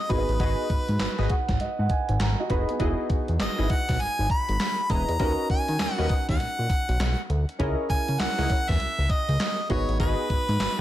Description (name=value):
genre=R&B, new jack swing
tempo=100 BPM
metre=4/4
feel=swing 63% on 16ths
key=unclear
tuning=A4 = 440 Hz
part: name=warm harmonica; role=melody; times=0.0-10.8 s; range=B4 to B5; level=-29 LUFS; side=equal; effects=none
part: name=warm concert grand piano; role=accompaniment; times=0.0-10.8 s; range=B3 to B5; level=-32 LUFS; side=right 2 dB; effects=none
part: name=funky polysynth comp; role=stabs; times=0.1-10.8 s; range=E4 to D#5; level=-33 LUFS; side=left 1 dB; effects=chorus
part: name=fat analog bass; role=bass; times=0.1-10.8 s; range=E1 to D#3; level=-26 LUFS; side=equal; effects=none
part: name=gated 80s digital drum machine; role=drums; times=0.1-10.8 s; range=handclaps, hi-hat, kick drum, snare drum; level=-27 LUFS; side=equal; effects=gated reverb, gated reverb snare
room=light reverb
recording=none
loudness=-23 LUFS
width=side -13 dB against mid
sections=0.0-10.8 A section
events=grand piano fill 1.0-2.8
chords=0.1 G#m7; 2.8 Emaj7; 5.2 Bmaj7/D#; 7.6 C#m69; 9.7 G#m7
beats=| 0.40 1.00 1.60 2.20 | 2.80 3.40 4.00 4.60 | 5.20 5.80 6.40 7.00 | 7.60 8.20 8.80 9.40 | 10.00 10.60